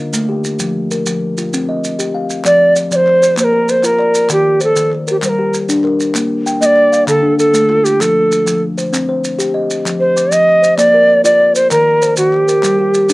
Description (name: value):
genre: southern african traditional, mbira-style interlocking cycle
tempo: 130 BPM (dotted quarters)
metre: 12/8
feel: straight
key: F mixolydian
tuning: A4 = 440 Hz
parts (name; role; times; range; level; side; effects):
- kalimba; arpeggios; 0.0-13.1 s; D3 to D6; -16 LUFS; left 2 dB; cassette tape
- maracas; percussion; 0.1-13.1 s; none; -22 LUFS; right 3 dB; none
- group handclap; percussion; 2.4-13.1 s; none; -27 LUFS; left 2 dB; none
- bright reedy Native American-style cedar flute; melody; 2.5-13.1 s; G4 to Eb5; -10 LUFS; right 1 dB; cassette tape
room: light reverb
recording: home recording on cassette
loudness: -10 LUFS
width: side -21 dB against mid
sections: 0.0-2.4 A section; 2.4-13.1 B section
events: none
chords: 0.0 Dm (rootless); 0.6 Fsus4; 1.5 Cm; 2.4 F5; 3.4 Bb; 4.3 Eb; 5.2 Gm; 6.2 Bb; 7.1 Dm; 8.0 F; 8.9 Cm; 9.9 F5; 10.8 Bb; 11.7 Eb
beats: 0.13 | 0.59 1.06 1.52 1.99 | 2.45 2.91 3.38 3.84 | 4.30 4.76 5.23 5.69 | 6.15 6.62 7.08 7.54 | 8.01 8.47 8.93 9.39 | 9.86 10.32 10.79 11.25 | 11.71 12.18 12.64 13.10